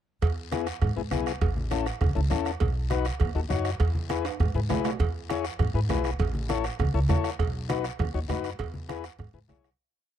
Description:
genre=latin, cumbia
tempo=200 BPM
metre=4/4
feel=straight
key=E major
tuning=A4 = 444 Hz
part: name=upright bass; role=bass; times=0.2-9.7 s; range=A1 to G#2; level=-29 LUFS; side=equal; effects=none
part: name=bombo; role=percussion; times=0.2-9.8 s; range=none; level=-30 LUFS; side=right 3 dB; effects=none
part: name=congas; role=percussion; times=0.2-9.6 s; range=none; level=-34 LUFS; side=left 2 dB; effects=none
part: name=cowbell and timbales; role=percussion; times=0.2-9.6 s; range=none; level=-35 LUFS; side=right 10 dB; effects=none
part: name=guiro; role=percussion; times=0.2-9.8 s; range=none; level=-43 LUFS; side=left 15 dB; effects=none
part: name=combo organ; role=accompaniment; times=0.5-9.7 s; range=B3 to C#5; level=-32 LUFS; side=left 12 dB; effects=none
room=small room ambience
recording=dry, close 1970s-style studio recording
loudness=-25 LUFS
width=side -10 dB against mid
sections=0.2-9.8 groove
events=drum fill 4.2-5.0; fade-out 7.9-9.8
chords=0.2 E; 1.4 A; 2.6 B; 3.8 E; 6.2 A; 7.4 B; 8.6 E

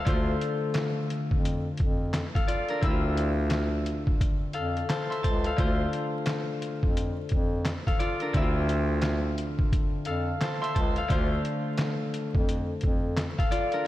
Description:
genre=hip hop, boom-bap hip-hop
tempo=87 BPM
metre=4/4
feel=swing 62% on 16ths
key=D minor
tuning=A4 = 440 Hz
part: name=concert harp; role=accompaniment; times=0.0-13.9 s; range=D3 to C6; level=-29 LUFS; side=left 1 dB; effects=cassette tape, high-pass filter, low-pass filter
part: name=warm bass clarinet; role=bass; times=0.1-13.3 s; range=C#2 to F2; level=-30 LUFS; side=equal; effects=none
part: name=trip hop sampler-style drum kit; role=drums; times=0.1-13.8 s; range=handclaps, hi-hat, kick drum, snare drum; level=-28 LUFS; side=equal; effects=none
room=moderate lush hall reverb, RT60 3.2 s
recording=dreamy mix soaked in reverb, vinyl crackle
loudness=-25 LUFS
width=side -15 dB against mid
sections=0.0-13.9 A section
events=none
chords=0.1 Dm7; 2.8 Dm9; 5.6 Dm7; 8.3 Dm9; 11.1 Dm7

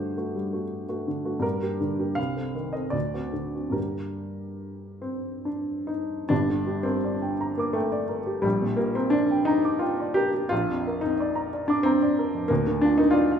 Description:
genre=classical, romantic character piece for solo piano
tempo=68-95 BPM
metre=3/4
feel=rubato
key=G minor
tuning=A4 = 440 Hz
part: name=dark baby grand piano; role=solo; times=0.0-13.4 s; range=G1 to D6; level=-24 LUFS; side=equal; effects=none
room=moderate large studio reverb, RT60 0.9 s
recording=heard from further back in the room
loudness=-23 LUFS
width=side -8 dB against mid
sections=0.0-6.3 A section; 6.3-13.4 B section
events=none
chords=0.0 D7; 1.4 Gm; 2.2 Adim/C; 2.9 D7; 3.8 Gm; 8.4 Gm/Bb; 10.5 Bb; 12.5 Bb/D

